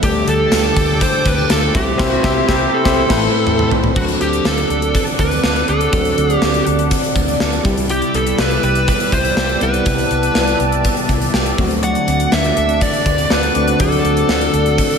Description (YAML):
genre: 1980s-style pop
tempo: 122 BPM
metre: 4/4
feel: straight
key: unclear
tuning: A4 = 440 Hz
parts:
  - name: fuzz lead guitar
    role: melody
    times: 0.0-15.0 s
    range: F#4 to F#5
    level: -19 LUFS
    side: equal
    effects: distortion, ping-pong delay, slapback echo
  - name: bell-like tine electric piano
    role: accompaniment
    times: 0.0-15.0 s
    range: A2 to F#5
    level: -20 LUFS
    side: left 2 dB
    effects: slapback echo
  - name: phased analog pad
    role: sustained chords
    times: 0.0-15.0 s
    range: G4 to E6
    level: -24 LUFS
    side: left 1 dB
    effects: phaser, chorus
  - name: clean electric guitar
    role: riff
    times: 0.0-15.0 s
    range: F#3 to A4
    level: -25 LUFS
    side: right 4 dB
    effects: ensemble chorus, slapback echo
  - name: vintage muted fingered electric bass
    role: bass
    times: 0.0-14.8 s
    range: A1 to D2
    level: -22 LUFS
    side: equal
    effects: none
  - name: gated 80s drum kit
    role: drums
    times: 0.0-15.0 s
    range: crash cymbal, hi-hat, kick drum, snare drum, tambourine, toms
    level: -19 LUFS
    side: equal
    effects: none
room: wet lush hall reverb, RT60 1.9 s, studio reverb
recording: big arena sound, lossy compression artefacts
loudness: -13 LUFS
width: side -6 dB against mid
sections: 0.0-4.0 A section; 4.0-15.0 B section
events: band accent 2.0-4.0; drum fill 3.0-4.0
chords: 0.0 Dsus4; 1.7 C; 3.0 Amadd9; 4.0 D7; 7.7 Cmaj7; 11.6 D7